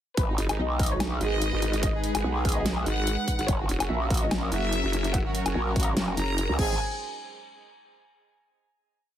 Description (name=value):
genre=heavy wobble dubstep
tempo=145 BPM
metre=4/4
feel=swing 54% on 16ths, half-time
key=G# minor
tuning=A4 = 440 Hz
part: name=warm studio violin section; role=melody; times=0.2-6.7 s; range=D#4 to A#5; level=-32 LUFS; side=equal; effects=tape echo
part: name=supersaw pad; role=sustained chords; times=0.5-6.8 s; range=F#3 to B4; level=-34 LUFS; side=equal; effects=sidechain pumping
part: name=growl bass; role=bass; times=0.2-6.8 s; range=F#1 to C#2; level=-28 LUFS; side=equal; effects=chorus, overdrive
part: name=dubstep drum kit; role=drums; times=0.2-6.7 s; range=crash cymbal, hi-hat, snare drum, woodblock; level=-32 LUFS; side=left 1 dB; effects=none
part: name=electronic kick drum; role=drums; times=0.2-6.7 s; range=none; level=-28 LUFS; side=equal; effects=none
part: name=vowel-sweep wobble bass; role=bass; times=0.4-6.5 s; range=E1 to G#1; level=-28 LUFS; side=equal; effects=chorus, overdrive
part: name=warm brass ensemble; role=stabs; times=1.2-6.7 s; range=A#3 to G#4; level=-36 LUFS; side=right 5 dB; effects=tape echo
room=digital ambience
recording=heavily compressed radio sound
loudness=-24 LUFS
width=side -11 dB against mid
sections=0.2-6.8 drop; 6.8-8.4 final hit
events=drop 0.2-6.8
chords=0.2 G#m; 3.5 F#; 6.6 G#; 6.8 N.C.